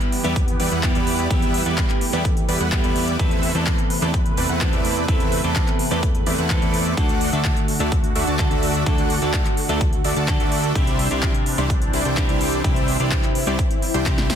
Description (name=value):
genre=EDM, festival progressive house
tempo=127 BPM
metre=4/4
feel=straight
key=unclear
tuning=A4 = 440 Hz
part: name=semi-hollow electric guitar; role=accompaniment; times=0.0-14.4 s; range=C3 to B4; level=-26 LUFS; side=equal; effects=sidechain pumping, ping-pong delay
part: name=lush unison pad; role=sustained chords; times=0.0-14.4 s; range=C3 to B4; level=-28 LUFS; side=equal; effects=chorus, phaser, sidechain pumping
part: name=big-room dance drum kit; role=drums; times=0.0-14.4 s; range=handclaps, hi-hat, snare drum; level=-28 LUFS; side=equal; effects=none
part: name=big supersaw lead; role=riff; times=0.2-14.4 s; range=G3 to A5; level=-25 LUFS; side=right 1 dB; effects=sidechain pumping, ping-pong delay
part: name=fat analog bass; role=bass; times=0.2-14.4 s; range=C2 to E2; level=-26 LUFS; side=equal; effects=sidechain pumping
part: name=electronic kick drum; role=drums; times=0.4-14.2 s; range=none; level=-21 LUFS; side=equal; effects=none
room=little or no reverb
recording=dense, heavily limited modern master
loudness=-18 LUFS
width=side -8 dB against mid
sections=0.0-14.4 A section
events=drum fill 14.2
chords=0.0 Em; 3.2 Amadd9/E; 7.0 D; 10.8 Cadd9